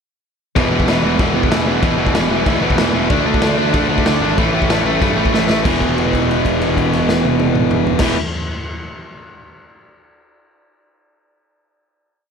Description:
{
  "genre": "punk rock",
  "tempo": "189 BPM",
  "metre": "4/4",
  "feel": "straight",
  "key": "unclear",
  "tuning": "A4 = 440 Hz",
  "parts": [
    { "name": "distorted electric guitar", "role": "riff", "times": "0.6-8.2 s", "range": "E2 to D4", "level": "-18 LUFS", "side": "right 13 dB", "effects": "distortion" },
    { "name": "tight distorted guitar", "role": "riff", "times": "0.6-8.2 s", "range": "E2 to D4", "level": "-18 LUFS", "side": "left 14 dB", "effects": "distortion" },
    { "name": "fuzz picked electric bass", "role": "bass", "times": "0.6-8.1 s", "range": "E1 to G2", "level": "-22 LUFS", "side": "equal", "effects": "overdrive" },
    { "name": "raw garage drum kit", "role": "drums", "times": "0.6-8.1 s", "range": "crash cymbal, kick drum, snare drum, toms", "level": "-19 LUFS", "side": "equal", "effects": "none" }
  ],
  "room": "small room ambience",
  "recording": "none",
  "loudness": "-13 LUFS",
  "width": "side -6 dB against mid",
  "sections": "0.6-5.6 riff; 5.6-8.2 final chord",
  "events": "drum fill 5.3-5.6; held note 5.6-8.0",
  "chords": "0.6 E5; 3.1 D5; 4.4 A5; 5.6 E5",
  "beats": "| 0.56 0.88 1.19 1.51 | 1.83 2.14 2.46 2.78 | 3.09 3.41 3.73 4.05 | 4.37 4.68 5.00 5.32 | 5.64 5.96 6.28 6.60 | 6.92 7.23 7.55 7.87"
}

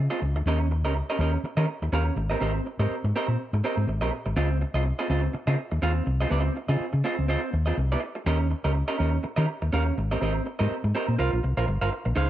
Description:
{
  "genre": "disco",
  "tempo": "123 BPM",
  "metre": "4/4",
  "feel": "swing 56% on 16ths",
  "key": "unclear",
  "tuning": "A4 = 440 Hz",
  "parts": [
    { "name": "hollow-body short-scale fingered electric bass", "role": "bass", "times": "0.0-12.3 s", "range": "G1 to Eb3", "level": "-24 LUFS", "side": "left 1 dB", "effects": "none" },
    { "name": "electric guitar through a small old amp", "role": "accompaniment", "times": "0.1-12.3 s", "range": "C4 to F5", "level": "-28 LUFS", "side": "right 3 dB", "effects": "spring reverb" }
  ],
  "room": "digital ambience",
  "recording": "dry, close 1970s-style studio recording",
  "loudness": "-24 LUFS",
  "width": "side -13 dB against mid",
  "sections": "0.0-12.2 A section",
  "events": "none",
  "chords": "0.5 Eb7; 2.2 Abmaj9; 4.4 Dbmaj9; 8.3 Eb7; 10.0 Abmaj9; 11.2 C7sus4",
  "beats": "| 0.46 0.95 1.44 1.92 | 2.41 2.90 3.39 3.88 | 4.36 4.85 5.34 5.83 | 6.32 6.80 7.29 7.78 | 8.27 8.75 9.24 9.73 | 10.21 10.70 11.19 11.67 | 12.16"
}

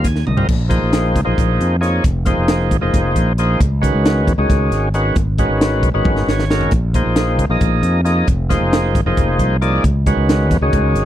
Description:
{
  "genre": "electric jazz fusion",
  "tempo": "269 BPM (eighths)",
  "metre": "7/8",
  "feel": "straight",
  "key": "Bb minor",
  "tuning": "A4 = 439 Hz",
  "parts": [
    { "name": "overdriven tonewheel organ", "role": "accompaniment", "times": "0.0-11.1 s", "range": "Eb3 to Ab5", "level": "-18 LUFS", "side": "equal", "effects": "slow rotary speaker" },
    { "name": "fretless electric bass", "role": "bass", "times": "0.0-11.1 s", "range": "F1 to F2", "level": "-17 LUFS", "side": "equal", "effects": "none" },
    { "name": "crisp fusion drum kit", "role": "drums", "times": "0.0-11.1 s", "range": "crash cymbal, hi-hat, kick drum, snare drum, toms", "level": "-19 LUFS", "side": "equal", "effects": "none" }
  ],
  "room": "little or no reverb",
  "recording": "none",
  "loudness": "-13 LUFS",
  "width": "side -12 dB against mid",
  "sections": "0.5-11.1 A section",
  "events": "tonewheel organ fill 0.0-0.5, 6.1-6.7; drum fill 0.2-0.5, 6.1-6.7",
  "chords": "0.5 Bbm11; 2.0 Fm7; 3.6 Db9sus4; 5.2 Abm11; 6.7 Bb9sus4; 8.3 Fm7; 9.8 Db9sus4",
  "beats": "0.04 0.27 | 0.49 0.71 0.93 1.16 1.38 1.60 1.82 | 2.05 2.27 2.49 2.72 2.94 3.16 3.38 | 3.61 3.83 4.05 4.27 4.50 4.72 4.94 | 5.17 5.39 5.61 5.83 6.06 6.28 6.50 | 6.72 6.95 7.17 7.39 7.62 7.84 8.06 | 8.28 8.51 8.73 8.95 9.18 9.40 9.62 | 9.84 10.07 10.29 10.51 10.73 10.96"
}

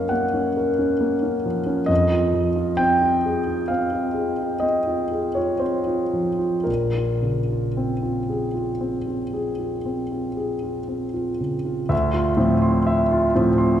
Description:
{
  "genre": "classical, impressionist solo piano",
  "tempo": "54-69 BPM",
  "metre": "5/4",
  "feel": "rubato",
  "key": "Bb minor",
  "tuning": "A4 = 440 Hz",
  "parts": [
    { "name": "clear concert grand piano", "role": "solo", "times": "0.0-13.8 s", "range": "Bb1 to C6", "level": "-20 LUFS", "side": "equal", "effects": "none" }
  ],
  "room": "wet concert hall reverb, RT60 2.0 s",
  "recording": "heard from further back in the room",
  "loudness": "-20 LUFS",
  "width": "side -10 dB against mid",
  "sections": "0.0-11.9 A section; 11.9-13.8 B section",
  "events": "none",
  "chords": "0.0 Gbmaj7; 1.9 Fm7; 6.7 Bbm9; 11.9 Dm9",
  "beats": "0.11 1.01 | 1.90 2.81 3.72 4.64 5.63 | 6.68 7.77 8.82 9.86 10.89 | 11.91 12.88"
}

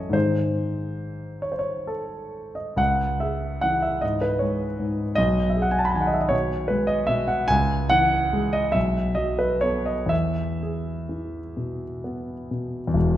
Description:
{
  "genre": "classical, romantic nocturne for solo piano",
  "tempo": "39-53 BPM (dotted quarters)",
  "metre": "6/8",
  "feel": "rubato",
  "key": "E major from 7.5 s",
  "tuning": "A4 = 440 Hz",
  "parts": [
    { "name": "warm concert grand piano", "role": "solo", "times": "0.0-13.2 s", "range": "E1 to B5", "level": "-22 LUFS", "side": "equal", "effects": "none" }
  ],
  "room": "wet recital hall reverb, RT60 1.6 s",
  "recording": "dark, warm production",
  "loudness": "-22 LUFS",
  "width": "side -12 dB against mid",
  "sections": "0.0-12.9 A section",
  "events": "none",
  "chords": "0.1 G#; 2.8 C#m; 5.2 G#m/B; 7.5 C#m; 8.8 B5; 10.1 E",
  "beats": "| 0.14 1.44 | 2.79 4.02 | 5.17 6.33 | 7.51 8.76 | 10.12 11.56 | 12.95"
}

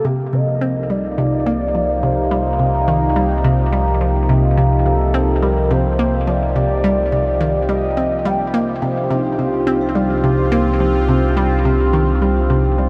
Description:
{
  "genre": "ambient, sequencer-driven space music",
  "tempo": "106 BPM",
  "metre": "4/4",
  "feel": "straight",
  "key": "C minor",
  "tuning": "A4 = 440 Hz",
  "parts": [
    { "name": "expressive portamento lead", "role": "melody", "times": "0.0-8.7 s", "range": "G4 to G5", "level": "-26 LUFS", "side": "equal", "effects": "lush chorus, delay" },
    { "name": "sweeping resonant pad", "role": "sustained chords", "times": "0.0-12.9 s", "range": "C3 to G4", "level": "-22 LUFS", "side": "equal", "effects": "chorus, phaser" },
    { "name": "hollow square pluck", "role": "riff", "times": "0.0-12.9 s", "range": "C3 to C4", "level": "-22 LUFS", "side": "equal", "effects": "chorus, phaser, delay" },
    { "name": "round analog bass", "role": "bass", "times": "0.0-12.9 s", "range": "C2", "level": "-23 LUFS", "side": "equal", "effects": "none" },
    { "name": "vibraphone with soft mallets", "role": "arpeggios", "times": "8.8-12.9 s", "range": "C4 to C5", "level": "-23 LUFS", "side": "equal", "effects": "delay" }
  ],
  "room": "moderate huge ambient reverb, RT60 7.8 s",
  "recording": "dark, warm production",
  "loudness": "-17 LUFS",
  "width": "mono",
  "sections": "0.0-12.9 A section",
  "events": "fade-out 11.8-12.9",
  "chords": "0.0 Cmadd9",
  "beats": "0.33 0.90 1.46 | 2.03 2.60 3.16 3.73 | 4.29 4.86 5.43 5.99 | 6.56 7.12 7.69 8.26 | 8.82 9.39 9.95 10.52 | 11.09 11.65 12.22 12.79"
}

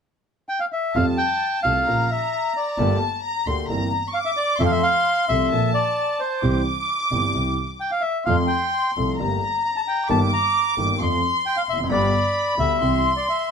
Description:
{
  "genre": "tango",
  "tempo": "132 BPM",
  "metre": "4/4",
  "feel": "rubato",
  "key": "F major",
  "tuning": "A4 = 439 Hz",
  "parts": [
    { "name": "bandoneon", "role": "melody", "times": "0.5-13.5 s", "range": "C5 to Bb5", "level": "-22 LUFS", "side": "left 1 dB", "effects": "none" },
    { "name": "warm studio violin section", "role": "second line", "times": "0.9-13.5 s", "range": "A5 to D6", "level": "-24 LUFS", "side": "left 1 dB", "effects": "none" },
    { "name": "warm grand piano", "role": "accompaniment", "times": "1.0-13.0 s", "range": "G1 to A4", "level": "-25 LUFS", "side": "equal", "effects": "none" },
    { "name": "dark double bass", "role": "bass", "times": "1.0-13.0 s", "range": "F1 to F2", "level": "-25 LUFS", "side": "right 1 dB", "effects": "none" }
  ],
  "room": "moderate small room reverb, RT60 0.5 s",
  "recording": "band playing live in one room",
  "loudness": "-19 LUFS",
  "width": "side -6 dB against mid",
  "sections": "1.0-13.5 A section",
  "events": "none",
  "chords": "0.0 N.C.; 1.0 Fadd9; 1.9 Bbm; 2.8 Gmadd9; 3.7 C7/G; 4.6 F; 5.5 Bbmaj7; 6.4 C; 8.3 F; 9.2 Gmadd9; 10.1 Eb/G; 11.0 F; 11.9 G; 12.8 C",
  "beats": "0.04 0.49 | 0.95 1.41 1.87 2.32 | 2.78 3.24 3.69 4.15 | 4.60 5.06 5.51 5.96 | 6.42 6.88 7.34 7.80 | 8.26 8.72 9.18 9.64 | 10.09 10.54 10.99 11.45 | 11.90 12.35 12.81 13.26"
}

